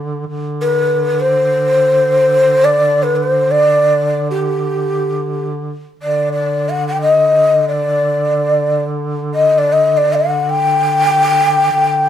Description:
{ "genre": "Turkish makam ensemble", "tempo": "free time", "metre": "none", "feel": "none", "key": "D makam hicaz", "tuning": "A4 = 440 Hz", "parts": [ { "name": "warm duduk", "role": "drone", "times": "0.0-12.1 s", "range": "D3", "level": "-21 LUFS", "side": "right 1 dB", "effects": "none" }, { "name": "breathy mellow ney", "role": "melody", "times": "0.6-12.1 s", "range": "G4 to G5", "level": "-12 LUFS", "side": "left 1 dB", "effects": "none" } ], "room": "moderate stone room reverb, RT60 1.0 s", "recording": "band playing live in one room", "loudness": "-12 LUFS", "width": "side -10 dB against mid", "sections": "0.0-12.1 A section", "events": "none", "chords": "none", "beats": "free time" }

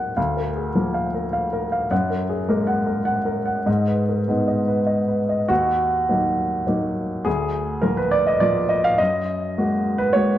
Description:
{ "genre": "neoclassical minimalist piano", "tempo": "103 BPM", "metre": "3/4", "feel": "rubato", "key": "Eb minor", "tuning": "A4 = 441 Hz", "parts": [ { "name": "warm baby grand piano", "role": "solo", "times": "0.0-10.4 s", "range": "D2 to Gb5", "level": "-19 LUFS", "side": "equal", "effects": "none" } ], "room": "wet spring reverb, RT60 1.7 s", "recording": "heard from further back in the room", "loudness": "-19 LUFS", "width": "side -12 dB against mid", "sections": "0.0-5.5 A section; 5.5-10.4 B section", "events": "none", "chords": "0.2 Bb/D; 1.9 Gbadd9; 3.7 Abm; 5.5 Ebm; 7.3 Bb/D; 9.0 Gbadd9", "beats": "| 0.17 0.75 1.33 | 1.91 2.48 3.06 | 3.67 4.28 4.88 | 5.50 6.09 6.68 | 7.26 7.83 8.41 | 8.99 9.57 10.14" }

